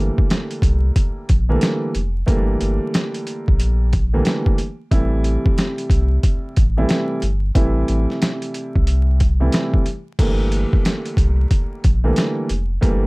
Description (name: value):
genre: hip hop, boom-bap hip-hop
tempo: 91 BPM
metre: 4/4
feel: swing 63% on 16ths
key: G dorian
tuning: A4 = 440 Hz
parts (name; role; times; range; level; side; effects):
- dark concert grand piano; accompaniment; 0.0-13.1 s; C3 to E4; -23 LUFS; right 1 dB; cassette tape, high-pass filter, low-pass filter
- warm sub bass; bass; 0.0-13.1 s; F1 to C2; -18 LUFS; equal; none
- boom bap sampler-style drum kit; drums; 0.2-13.0 s; crash cymbal, hi-hat, kick drum, snare drum; -18 LUFS; equal; overdrive
room: little or no reverb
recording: dark, warm production, vinyl crackle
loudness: -16 LUFS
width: side -26 dB against mid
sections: 0.0-10.2 A section; 10.2-13.1 A section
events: none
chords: 0.0 Gm69; 4.9 Am7; 10.2 Gm69